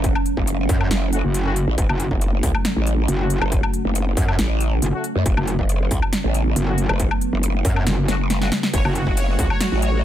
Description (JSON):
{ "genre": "heavy wobble dubstep", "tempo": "138 BPM", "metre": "4/4", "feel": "half-time", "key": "F# minor", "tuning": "A4 = 439 Hz", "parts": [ { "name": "evolving wavetable pad", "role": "sustained chords", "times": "0.0-10.0 s", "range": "C#3 to F#4", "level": "-27 LUFS", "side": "right 2 dB", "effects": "chorus, built-in reverb, sidechain pumping" }, { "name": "growl bass", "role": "bass", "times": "0.0-10.0 s", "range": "F#1 to F#2", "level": "-20 LUFS", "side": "equal", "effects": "chorus, overdrive" }, { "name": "big-room dance drum kit", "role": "drums", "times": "0.0-9.9 s", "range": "hi-hat, ride cymbal, snare drum, woodblock", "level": "-26 LUFS", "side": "left 1 dB", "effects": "overdrive" }, { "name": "electronic kick drum", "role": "drums", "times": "0.0-9.5 s", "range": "none", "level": "-22 LUFS", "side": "equal", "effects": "distortion" }, { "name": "metallic wobble bass", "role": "bass", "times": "0.7-9.0 s", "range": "F#1 to F#2", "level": "-20 LUFS", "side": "equal", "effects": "distortion, chorus, overdrive" }, { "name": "dark brass ensemble", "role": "stabs", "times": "1.1-8.5 s", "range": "A3 to F#4", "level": "-32 LUFS", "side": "left 3 dB", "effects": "dub echo" }, { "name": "soft supersaw", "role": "melody", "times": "8.7-10.0 s", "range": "F#4 to C#5", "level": "-26 LUFS", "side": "right 1 dB", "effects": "phaser, cassette tape" } ], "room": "digital ambience", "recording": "none", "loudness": "-18 LUFS", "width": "side -11 dB against mid", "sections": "0.0-10.0 A section", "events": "drum fill 8.1-8.7", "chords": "0.0 F#m", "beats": "| 0.04 0.47 0.91 1.34 | 1.78 2.21 2.65 3.08 | 3.52 3.95 4.39 4.82 | 5.26 5.69 6.13 6.56 | 7.00 7.43 7.87 8.30 | 8.73 9.17 9.61 10.04" }